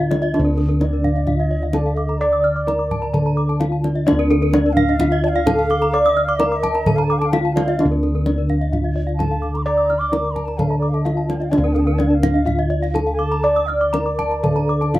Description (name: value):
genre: Balinese gamelan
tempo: 129 BPM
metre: 4/4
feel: straight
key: D pelog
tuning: A4 = 440 Hz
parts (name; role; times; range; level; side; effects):
- gamelan-type bronze metallophone; melody; 0.0-15.0 s; D4 to D5; -22 LUFS; equal; none
- gamelan-type bronze metallophone; arpeggios; 0.0-14.9 s; Bb4 to Eb6+35c; -26 LUFS; right 3 dB; none
- gamelan-type bossed gongs; bass; 0.0-15.0 s; D2 to D5; -19 LUFS; equal; none
- gamelan-type bronze metallophone; arpeggios; 0.1-15.0 s; A4 to F6; -26 LUFS; left 4 dB; none
- kendang; percussion; 0.1-15.0 s; none; -25 LUFS; equal; none
- reedy bansuri; second line; 0.8-15.0 s; D5 to D6; -28 LUFS; right 2 dB; none
room: light reverb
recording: none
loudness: -16 LUFS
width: side -15 dB against mid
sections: 0.3-15.0 A section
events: none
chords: none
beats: | 0.34 0.81 1.27 1.74 | 2.21 2.67 3.14 3.60 | 4.07 4.54 5.00 5.47 | 5.93 6.40 6.87 7.33 | 7.80 8.26 8.73 9.20 | 9.66 10.13 10.59 11.06 | 11.52 11.99 12.47 12.95 | 13.44 13.94 14.44 14.95